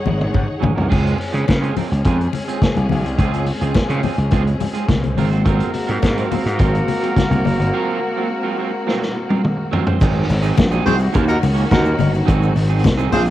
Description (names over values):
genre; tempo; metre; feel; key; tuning
disco; 106 BPM; 4/4; straight; unclear; A4 = 439 Hz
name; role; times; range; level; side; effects
clear symphonic string section; sustained chords; 0.0-13.3 s; C3 to Gb5; -25 LUFS; left 2 dB; cassette tape
gritty slap bass; bass; 0.1-13.3 s; Gb1 to Db3; -18 LUFS; equal; overdrive
congas; percussion; 0.1-13.3 s; none; -24 LUFS; left 7 dB; none
electric guitar at the edge of break-up; accompaniment; 0.2-13.3 s; F3 to C5; -26 LUFS; right 9 dB; cassette tape
vintage drum kit; drums; 0.2-13.3 s; crash cymbal, hi-hat, kick drum, snare drum, toms; -20 LUFS; equal; cassette tape
warm horn section; stabs; 5.4-13.2 s; Bb3 to C5; -23 LUFS; equal; cassette tape
egg shaker; percussion; 10.0-13.3 s; none; -49 LUFS; left 13 dB; none
room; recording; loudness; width
small room ambience; home recording on cassette; -15 LUFS; side -14 dB against mid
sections
0.9-10.0 A section; 10.0-13.3 B section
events
drum fill 0.0-0.9, 8.9-10.0; break 7.7-10.0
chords
0.0 Ab7sus4; 0.9 Dbmaj7; 5.2 Ab13; 10.0 Ab7; 11.1 Ebm7; 12.3 Ab7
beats
0.34 | 0.91 1.48 2.05 2.62 | 3.19 3.76 4.32 4.89 | 5.46 6.03 6.60 7.17 | 7.74 8.30 8.87 9.44 | 10.01 10.57 11.14 11.71 | 12.28 12.84